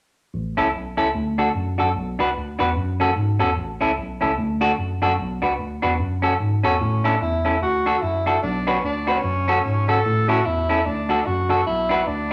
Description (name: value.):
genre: ska.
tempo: 148 BPM.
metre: 4/4.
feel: swing 60% on 8ths.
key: A major.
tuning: A4 = 440 Hz.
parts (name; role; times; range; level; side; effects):
mellow tine electric piano; bass; 0.3-12.3 s; A1 to A2; -27 LUFS; equal; none.
semi-hollow electric guitar; accompaniment; 0.6-12.3 s; C#4 to B4; -24 LUFS; equal; none.
breathy tenor saxophone; melody; 6.7-12.3 s; C#4 to A4; -26 LUFS; equal; none.
room: moderate large studio reverb, RT60 0.8 s.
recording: none.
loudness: -21 LUFS.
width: mono.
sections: 0.3-6.8 A section; 6.8-12.3 B section.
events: none.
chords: 0.3 A; 1.1 D; 1.9 Bm; 2.8 F#m; 3.6 A; 4.4 D; 5.2 Bm; 6.0 F#m; 6.8 A; 7.6 D; 8.4 Bm; 9.2 F#m; 10.0 A; 10.9 D; 11.7 Bm.